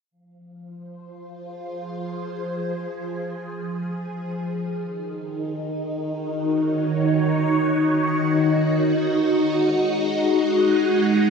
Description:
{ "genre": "ambient", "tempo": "free time", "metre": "none", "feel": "none", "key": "F phrygian", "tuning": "A4 = 440 Hz", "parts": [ { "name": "phased string machine", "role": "sustained chords", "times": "0.1-11.3 s", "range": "Eb3 to Db5", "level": "-21 LUFS", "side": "equal", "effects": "ensemble chorus, phaser" } ], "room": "wet lush hall reverb, RT60 2.7 s", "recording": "dreamy mix soaked in reverb", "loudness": "-20 LUFS", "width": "side -5 dB against mid", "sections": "0.1-11.3 A section", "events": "fade-in on string machine 0.1-11.3", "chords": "0.1 Fm; 4.8 Ebm7; 9.5 Ab7(no3)", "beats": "free time" }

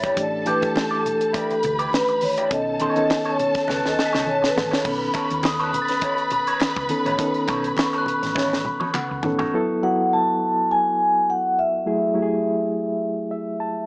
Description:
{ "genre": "lush 1970s-style soul", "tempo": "103 BPM", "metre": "4/4", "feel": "swing 54% on 16ths", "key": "unclear", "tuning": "A4 = 441 Hz", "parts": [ { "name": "vibraphone with soft mallets", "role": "melody", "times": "0.0-4.7, 9.8-13.9 s", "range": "A4 to A5", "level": "-21 LUFS", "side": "equal", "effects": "none" }, { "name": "warm studio string section", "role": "second line", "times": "0.0-9.2 s", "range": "A4 to B5", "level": "-26 LUFS", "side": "left 1 dB", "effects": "none" }, { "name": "mellow reed electric piano", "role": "accompaniment", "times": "0.0-13.9 s", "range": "D#3 to B5", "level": "-25 LUFS", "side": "equal", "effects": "medium tremolo" }, { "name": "electric guitar through a small old amp", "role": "riff", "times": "0.0-9.6 s", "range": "D#4 to D5", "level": "-28 LUFS", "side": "right 1 dB", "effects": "wah" }, { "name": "hollow-body short-scale fingered electric bass", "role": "bass", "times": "0.0-9.5 s", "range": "G1 to D#2", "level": "-34 LUFS", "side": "equal", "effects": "none" }, { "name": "tight funk drum kit", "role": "drums", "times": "0.0-9.5 s", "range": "crash cymbal, hi-hat, kick drum, snare drum, toms", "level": "-26 LUFS", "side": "equal", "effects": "none" }, { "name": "glockenspiel with hard plastic mallets", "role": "texture", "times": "0.0-8.6 s", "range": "C#6 to B6", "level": "-31 LUFS", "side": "equal", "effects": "none" }, { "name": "congas", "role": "percussion", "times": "0.5-9.5 s", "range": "none", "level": "-36 LUFS", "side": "right 1 dB", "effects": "none" }, { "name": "group handclap", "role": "percussion", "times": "5.1-9.1 s", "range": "none", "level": "-33 LUFS", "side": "equal", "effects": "none" } ], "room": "light reverb", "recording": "small speaker sound", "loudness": "-19 LUFS", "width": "side -27 dB against mid", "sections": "0.0-4.9 A section; 4.9-9.5 B section; 9.5-13.9 C section", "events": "vibraphone solo 0.0-4.9; drum fill 3.7-4.9, 8.4-9.5; reed electric piano fill 8.4-9.5, 13.0-13.9", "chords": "0.2 A7sus4; 2.5 B9; 9.5 B7sus4; 11.9 F#m9", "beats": "| 0.17 0.76 1.34 1.93 | 2.51 3.10 3.68 4.27 | 4.85 5.44 6.02 6.61 | 7.19 7.77 8.36 8.94 | 9.53 10.11 10.69 11.27 | 11.86 12.44 13.02 13.60" }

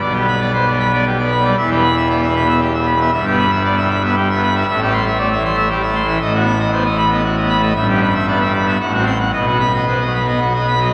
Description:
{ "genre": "classical, organ toccata", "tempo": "116 BPM", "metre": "3/4", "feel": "straight", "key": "unclear", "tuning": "A4 = 437 Hz", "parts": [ { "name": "pipe organ, full organ", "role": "solo", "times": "0.0-10.9 s", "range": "E1 to C6", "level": "-16 LUFS", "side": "equal", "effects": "none" } ], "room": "wet cathedral reverb, RT60 4.8 s", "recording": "vinyl crackle", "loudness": "-16 LUFS", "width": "mono", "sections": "0.0-10.9 A section", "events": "none", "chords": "0.0 G/B; 1.6 Em; 3.1 Em/G; 4.7 Am7; 6.2 B7/A; 7.8 Em/G; 8.8 F#dim/A; 9.3 B", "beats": "| 0.02 0.55 1.06 | 1.58 2.10 2.62 | 3.14 3.65 4.17 | 4.68 5.19 5.70 | 6.21 6.73 7.24 | 7.76 8.28 8.80 | 9.33 9.87 10.41" }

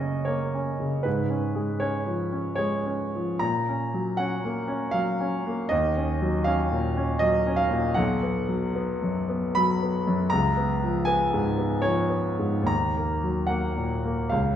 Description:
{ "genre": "classical, romantic character piece for solo piano", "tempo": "77 BPM", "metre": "3/4", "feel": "uneven beats, rubato", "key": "F# major", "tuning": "A4 = 438 Hz", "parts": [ { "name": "clear concert grand piano", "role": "solo", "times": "0.0-14.6 s", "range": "B1 to B5", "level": "-23 LUFS", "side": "equal", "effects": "none" } ], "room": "wet recital hall reverb, RT60 1.6 s", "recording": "heard from further back in the room", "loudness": "-23 LUFS", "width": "side -10 dB against mid", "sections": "0.0-14.6 A section", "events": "none", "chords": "0.0 F#; 1.1 C#7/G#; 3.4 F#/A#; 5.7 D#m7; 8.0 B5; 10.3 C#7; 12.7 D#m", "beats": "0.27 | 1.06 1.81 2.58 | 3.42 4.20 4.95 | 5.72 6.47 7.22 | 7.98 8.75 9.57 | 10.33 11.09 11.85 | 12.69 13.50 14.31" }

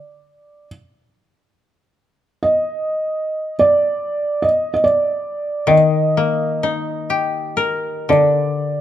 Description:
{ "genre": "japanese traditional, Japanese chamber music", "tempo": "free time", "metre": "none", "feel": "none", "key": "unclear", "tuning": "A4 = 440 Hz", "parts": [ { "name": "felt-muted upright piano", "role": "melody", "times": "0.0-8.8 s", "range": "D5 to Eb5", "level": "-17 LUFS", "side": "right 2 dB", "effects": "none" }, { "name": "koto", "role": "accompaniment", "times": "5.7-8.8 s", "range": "D3 to Bb4", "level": "-18 LUFS", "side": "left 6 dB", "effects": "none" } ], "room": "moderate recital hall reverb, RT60 1.7 s", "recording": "close, detailed microphones", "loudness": "-16 LUFS", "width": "side -11 dB against mid", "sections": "0.0-8.8 A section", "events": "none", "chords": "none", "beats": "free time" }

